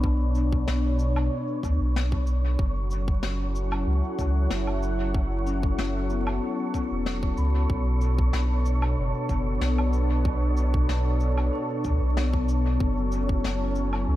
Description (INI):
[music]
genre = ambient dub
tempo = 94 BPM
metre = 4/4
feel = straight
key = B minor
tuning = A4 = 444 Hz
[part]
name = warm analog pad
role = sustained chords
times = 0.0-14.2 s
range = B2 to F#5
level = -30 LUFS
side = right 1 dB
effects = wide subtle chorus
[part]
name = vibraphone with soft mallets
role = arpeggios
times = 0.0-14.2 s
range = B3 to B5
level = -34 LUFS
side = left 5 dB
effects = dub echo
[part]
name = warm sub bass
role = bass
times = 0.0-14.2 s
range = E1 to D2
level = -25 LUFS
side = equal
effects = none
[part]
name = electronic kick drum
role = drums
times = 0.0-13.4 s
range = none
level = -27 LUFS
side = equal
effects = none
[part]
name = wind-like tuned noise texture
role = texture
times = 0.0-14.2 s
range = C#5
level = -38 LUFS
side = right 2 dB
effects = built-in reverb
[part]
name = cabasa, snare drum and woodblock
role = drums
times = 0.3-14.0 s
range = none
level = -36 LUFS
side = left 3 dB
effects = dub echo
[sound]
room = small room ambience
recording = vinyl crackle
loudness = -23 LUFS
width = side -14 dB against mid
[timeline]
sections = 0.0-14.2 A section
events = none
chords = 0.0 Bm7; 2.6 F#m7; 7.7 Bm7; 12.8 F#m7